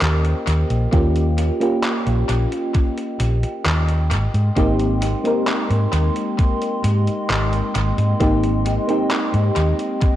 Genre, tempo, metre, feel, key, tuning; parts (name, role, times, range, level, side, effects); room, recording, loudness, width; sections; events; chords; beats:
vaporwave; 66 BPM; 4/4; straight; Ab major; A4 = 440 Hz
mellow FM electric piano; accompaniment; 0.0-10.2 s; Bb3 to C5; -22 LUFS; equal; lush chorus, tape echo
warbly tape-like pad; sustained chords; 0.0-10.2 s; Ab3 to C6; -28 LUFS; equal; chorus, built-in reverb
hollow-body short-scale fingered electric bass; bass; 0.0-9.7 s; Ab1 to Ab2; -18 LUFS; equal
detuned 8-bit digital drum machine; drums; 0.0-10.2 s; handclaps, hi-hat; -26 LUFS; equal; overdrive, tape echo
electronic kick drum; drums; 0.9-10.2 s; -17 LUFS; equal; overdrive
light reverb; echo-heavy mix, cassette tape; -17 LUFS; side -13 dB against mid
0.0-10.2 A section
0.0 Eb7; 4.1 Abmaj7
0.02 | 0.93 1.84 2.75 3.66 | 4.57 5.48 6.39 7.30 | 8.21 9.11 10.02